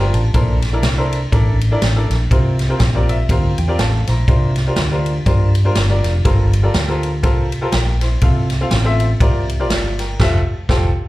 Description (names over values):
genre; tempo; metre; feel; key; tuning
uptempo gospel; 122 BPM; 4/4; swing 58% on 8ths; unclear; A4 = 440 Hz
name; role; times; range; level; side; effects
warm upright piano; accompaniment; 0.0-10.9 s; G2 to Bb5; -21 LUFS; equal; slapback echo
hollow-body short-scale fingered electric bass; bass; 0.0-10.9 s; F1 to G2; -16 LUFS; equal; none
swinging big-band drum kit; drums; 0.1-10.8 s; crash cymbal, kick drum, ride cymbal, snare drum; -18 LUFS; equal; none
room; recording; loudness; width
little or no reverb; live gig heard through the venue's PA, club reverb; -14 LUFS; side -17 dB against mid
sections
0.0-11.1 A section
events
upright piano fill 0.0-0.3, 2.8-4.3; band accent 10.2-11.1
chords
0.3 Bbmaj9#11; 2.3 C7sus4; 4.3 C9sus4; 6.2 Gm11; 8.2 F/C; 9.2 C9sus4; 10.2 Fmaj9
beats
| 0.34 0.83 1.33 1.82 | 2.31 2.80 3.29 3.79 | 4.28 4.77 5.26 5.76 | 6.25 6.74 7.24 7.73 | 8.22 8.71 9.21 9.70 | 10.19 10.69